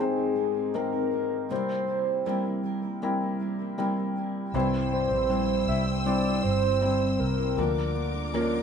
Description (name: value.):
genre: pop.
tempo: 79 BPM.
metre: 4/4.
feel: straight.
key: unclear.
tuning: A4 = 441 Hz.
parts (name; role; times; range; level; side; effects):
soft octave-layered synth lead; melody; 0.0-8.6 s; Ab4 to E5; -28 LUFS; equal; chorus, phaser.
felt-muted upright piano; accompaniment; 0.0-8.6 s; G2 to C5; -28 LUFS; left 2 dB; none.
fingerpicked steel-string acoustic guitar; arpeggios; 0.0-8.6 s; C3 to C5; -35 LUFS; right 7 dB; none.
warm studio string section; sustained chords; 4.5-8.6 s; F4 to E6; -36 LUFS; left 1 dB; none.
vintage muted fingered electric bass; bass; 4.5-8.6 s; G1 to D2; -30 LUFS; equal; none.
room: moderate large studio reverb, RT60 1.1 s.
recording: band playing live in one room.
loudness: -24 LUFS.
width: side -7 dB against mid.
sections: 0.0-4.5 A section; 4.5-8.6 B section.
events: none.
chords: 0.0 Abadd9; 1.5 C7; 4.5 C; 7.6 Bb/D.